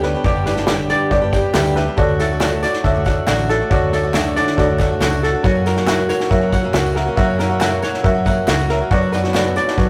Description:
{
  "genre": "indie folk with a building arrangement",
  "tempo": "138 BPM",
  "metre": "4/4",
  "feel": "straight",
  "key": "D major",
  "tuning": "A4 = 441 Hz",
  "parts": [
    { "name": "picked plugged-in twelve-string acoustic guitar", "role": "accompaniment", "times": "0.0-9.9 s", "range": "F#2 to G4", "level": "-26 LUFS", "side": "equal", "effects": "none" },
    { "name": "warm upright piano", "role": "accompaniment", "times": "0.0-9.9 s", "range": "F#1 to A#5", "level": "-24 LUFS", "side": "equal", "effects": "none" },
    { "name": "clear brass ensemble", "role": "sustained chords", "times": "0.0-9.9 s", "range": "A2 to G4", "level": "-32 LUFS", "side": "equal", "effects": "none" },
    { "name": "kora", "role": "arpeggios", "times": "0.0-9.9 s", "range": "F#4 to G5", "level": "-25 LUFS", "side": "equal", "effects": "none" },
    { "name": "hollow-body short-scale fingered electric bass", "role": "bass", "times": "0.0-9.9 s", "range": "G1 to F#2", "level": "-24 LUFS", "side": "equal", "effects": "none" },
    { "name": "unplugged drum kit", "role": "drums", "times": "0.0-9.9 s", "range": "kick drum, snare drum", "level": "-22 LUFS", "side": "equal", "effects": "none" },
    { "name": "tambourine", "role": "percussion", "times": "0.4-9.8 s", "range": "none", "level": "-43 LUFS", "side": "equal", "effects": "none" },
    { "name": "group handclap", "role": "percussion", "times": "0.7-9.4 s", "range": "none", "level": "-33 LUFS", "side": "equal", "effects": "none" }
  ],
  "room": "moderate booth ambience, RT60 0.2 s",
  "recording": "rough rehearsal-room recording, tube saturation",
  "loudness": "-17 LUFS",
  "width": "mono",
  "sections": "0.0-9.9 A section",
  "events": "upright piano fill 4.8-5.4, 8.0-8.9",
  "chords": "0.0 G; 2.0 D; 5.4 F#; 8.9 Bm/F#"
}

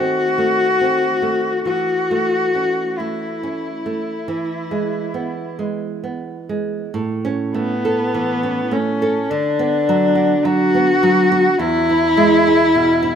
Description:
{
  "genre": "romantic duo for cello and classical guitar",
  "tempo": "44-54 BPM",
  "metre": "4/4",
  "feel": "rubato",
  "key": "A major",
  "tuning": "A4 = 441 Hz",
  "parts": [
    { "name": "rich cello", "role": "melody", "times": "0.0-13.2 s", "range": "B3 to F#4", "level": "-17 LUFS", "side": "left 2 dB", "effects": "none" },
    { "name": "nylon-string guitar", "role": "accompaniment", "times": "0.0-13.2 s", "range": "E2 to A4", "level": "-20 LUFS", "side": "right 4 dB", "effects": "none" }
  ],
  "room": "light reverb, small room ambience",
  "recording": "rough home demo mix",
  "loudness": "-16 LUFS",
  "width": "side -8 dB against mid",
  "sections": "0.0-6.9 A section; 6.9-13.2 B section",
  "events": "none",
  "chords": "0.0 D#dim7; 1.7 A/E; 4.3 E; 6.9 A; 9.3 Bm/D; 11.6 E"
}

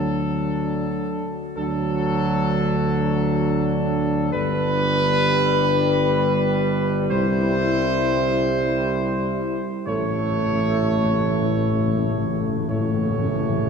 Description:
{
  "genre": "classical",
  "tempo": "87 BPM",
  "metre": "4/4",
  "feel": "straight",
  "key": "D major",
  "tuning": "A4 = 442 Hz",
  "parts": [
    { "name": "mellow trumpet section", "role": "melody", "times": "0.0-13.7 s", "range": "A4 to C#5", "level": "-24 LUFS", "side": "equal", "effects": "none" },
    { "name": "mellow French horn section", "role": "sustained chords", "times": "0.0-13.7 s", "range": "D4 to E4", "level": "-28 LUFS", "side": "left 5 dB", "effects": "none" },
    { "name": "warm trombone section", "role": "sustained chords", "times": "0.0-13.7 s", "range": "F#3 to A3", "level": "-26 LUFS", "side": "right 2 dB", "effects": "none" },
    { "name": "dark tuba", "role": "bass", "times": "0.0-13.7 s", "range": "G1 to D2", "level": "-24 LUFS", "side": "right 2 dB", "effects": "none" },
    { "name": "timpani", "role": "percussion", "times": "9.9-13.7 s", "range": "A2", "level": "-27 LUFS", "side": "left 4 dB", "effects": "none" }
  ],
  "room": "wet church reverb, RT60 3.8 s",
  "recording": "dark, warm production",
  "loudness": "-19 LUFS",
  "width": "side -6 dB against mid",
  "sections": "0.0-13.7 A section",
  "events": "timpani fill 9.9-13.7",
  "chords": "0.0 D; 4.3 G; 7.1 C; 9.9 A"
}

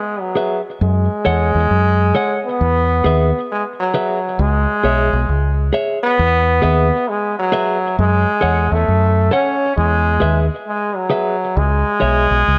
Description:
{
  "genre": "roots reggae",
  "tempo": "67 BPM",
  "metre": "4/4",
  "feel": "swing 64% on 16ths",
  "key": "unclear",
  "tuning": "A4 = 440 Hz",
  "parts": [
    { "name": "bright trombone", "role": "melody", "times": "0.0-12.6 s", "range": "F#3 to C#4", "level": "-20 LUFS", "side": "equal", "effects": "tape echo" },
    { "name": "clean electric guitar", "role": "accompaniment", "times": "0.4-12.3 s", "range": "G#4 to F#5", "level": "-24 LUFS", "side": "equal", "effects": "tape echo" },
    { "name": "deep dub fingered electric bass", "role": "bass", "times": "0.8-12.6 s", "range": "B1 to F#2", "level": "-18 LUFS", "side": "equal", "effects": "none" }
  ],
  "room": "moderate spring reverb, RT60 1.6 s",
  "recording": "none",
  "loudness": "-16 LUFS",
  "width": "mono",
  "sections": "0.0-12.6 A section",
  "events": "none",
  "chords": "0.0 E; 0.8 F#m; 2.6 E; 4.4 C#m; 6.2 E; 8.0 F#m; 9.8 E; 11.6 C#m"
}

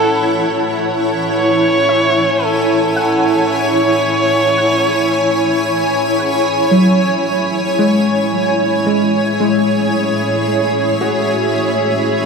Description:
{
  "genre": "ambient",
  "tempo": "56 BPM",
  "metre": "4/4",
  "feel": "straight",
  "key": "A major",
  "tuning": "A4 = 442 Hz",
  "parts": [
    { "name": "dark electric violin", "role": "melody", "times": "0.0-5.7 s", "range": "A4 to C#5", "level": "-18 LUFS", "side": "equal", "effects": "shimmer reverb, ping-pong delay" },
    { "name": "granular cloud pad", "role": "sustained chords", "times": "0.0-12.3 s", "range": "E4 to G#5", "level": "-15 LUFS", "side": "equal", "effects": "built-in reverb, shimmer reverb" },
    { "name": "soft round pluck", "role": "arpeggios", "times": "0.0-12.3 s", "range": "F#3 to F#5", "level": "-19 LUFS", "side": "left 1 dB", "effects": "analog chorus, shimmer reverb, ping-pong delay" },
    { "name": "warm symphonic cello section", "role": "bass", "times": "0.0-12.3 s", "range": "A2", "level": "-28 LUFS", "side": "equal", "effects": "none" }
  ],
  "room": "wet huge ambient reverb, RT60 8.5 s",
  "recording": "none",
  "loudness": "-12 LUFS",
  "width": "side -5 dB against mid",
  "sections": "0.0-12.3 A section",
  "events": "fade-in on cello section 0.0-12.3",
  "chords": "0.0 A6"
}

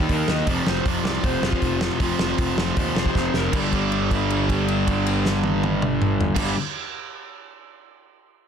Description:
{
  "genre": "punk rock",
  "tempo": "157 BPM",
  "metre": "4/4",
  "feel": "straight",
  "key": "G minor",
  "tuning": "A4 = 439 Hz",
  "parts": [
    { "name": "lead guitar through a small cranked amp", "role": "melody", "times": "0.0-3.5 s", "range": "F4 to Eb5", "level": "-29 LUFS", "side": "left 4 dB", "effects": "overdrive" },
    { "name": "distorted electric guitar", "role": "riff", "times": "0.0-6.6 s", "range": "F2 to Eb4", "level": "-25 LUFS", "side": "right 12 dB", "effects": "overdrive" },
    { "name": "sludgy distorted guitar", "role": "riff", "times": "0.0-6.5 s", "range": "F2 to Eb4", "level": "-26 LUFS", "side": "left 11 dB", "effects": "overdrive" },
    { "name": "fuzz picked electric bass", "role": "bass", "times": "0.0-6.5 s", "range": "F1 to Eb2", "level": "-27 LUFS", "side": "equal", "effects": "overdrive" },
    { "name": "loose indie drum kit", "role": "drums", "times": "0.0-6.5 s", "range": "crash cymbal, hi-hat, kick drum, snare drum, toms", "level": "-26 LUFS", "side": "equal", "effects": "none" }
  ],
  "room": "light reverb",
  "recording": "dense, heavily limited modern master",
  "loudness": "-20 LUFS",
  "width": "side -7 dB against mid",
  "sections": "0.0-3.5 A section; 3.5-6.6 B section",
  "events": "lead electric guitar solo 0.0-3.5; drum fill 3.1-3.5; held note 3.5-6.4",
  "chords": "0.5 F5; 3.5 G5"
}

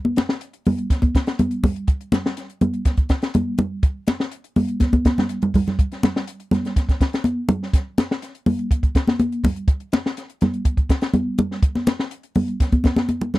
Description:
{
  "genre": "afrobeat",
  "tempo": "123 BPM",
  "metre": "4/4",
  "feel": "straight",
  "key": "none",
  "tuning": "none",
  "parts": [
    { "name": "congas", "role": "percussion", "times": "0.0-13.4 s", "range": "none", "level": "-20 LUFS", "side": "equal", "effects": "none" },
    { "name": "compact cocktail drum kit", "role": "drums", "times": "0.2-13.4 s", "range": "hi-hat, kick drum, snare drum", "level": "-19 LUFS", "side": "equal", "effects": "none" }
  ],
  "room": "little or no reverb",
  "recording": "dry, close 1970s-style studio recording",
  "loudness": "-19 LUFS",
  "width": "side -18 dB against mid",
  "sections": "0.0-13.4 A section",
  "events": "drum fill 4.8-5.8, 12.9-13.4",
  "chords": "none"
}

